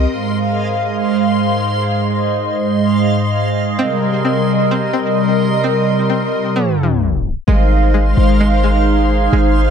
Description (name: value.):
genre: hip hop.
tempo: 130 BPM.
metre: 4/4.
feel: half-time.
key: Ab major.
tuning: A4 = 438 Hz.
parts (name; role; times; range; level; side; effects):
hollow soft pad; sustained chords; 0.0-9.7 s; Ab2 to F5; -15 LUFS; right 1 dB; chorus.
string-like resonator pluck; arpeggios; 0.0-0.1, 3.8-9.7 s; Ab3 to C4; -23 LUFS; left 1 dB; chorus, digital delay.
warm 808-style bass; bass; 0.0-0.1, 7.5-9.7 s; Ab1; -13 LUFS; equal; none.
backwards swelling texture; texture; 0.0-9.7 s; Ab4 to C6; -23 LUFS; left 1 dB; built-in reverb.
room: light reverb.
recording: tape stop.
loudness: -13 LUFS.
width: side -7 dB against mid.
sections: 0.1-7.5 A section; 7.5-9.7 B section.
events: tape stop 6.6-7.5.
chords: 0.1 Ab6; 3.8 Cm7; 7.5 Ab6.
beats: | 0.10 0.56 1.02 1.48 | 1.94 2.40 2.87 3.33 | 3.79 4.25 4.71 5.17 | 5.63 6.10 6.56 7.02 | 7.48 7.94 8.40 8.87 | 9.33.